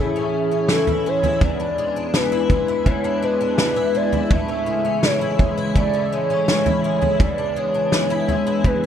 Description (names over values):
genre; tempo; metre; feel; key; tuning
dream pop; 83 BPM; 4/4; straight; A major; A4 = 440 Hz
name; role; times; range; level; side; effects
hollow clarinet-like synth lead; melody; 0.0-8.9 s; G#4 to E5; -22 LUFS; equal; chorus, tape echo
warbly tape-like pad; sustained chords; 0.0-8.9 s; C#3 to G#5; -24 LUFS; equal; chorus, built-in reverb
picked twelve-string acoustic guitar; arpeggios; 0.0-8.9 s; E2 to E4; -26 LUFS; left 4 dB; ensemble chorus, tape echo
loose indie drum kit; drums; 0.7-8.8 s; kick drum, snare drum, toms; -20 LUFS; equal; none
room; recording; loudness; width
light reverb, small room reverb; dark, warm production; -17 LUFS; side -9 dB against mid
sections
0.0-8.9 A section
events
none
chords
0.0 Amaj7; 1.4 E7; 4.3 Amaj7; 7.2 E7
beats
0.69 | 1.42 2.14 2.86 3.58 | 4.31 5.03 5.75 6.48 | 7.20 7.92 8.64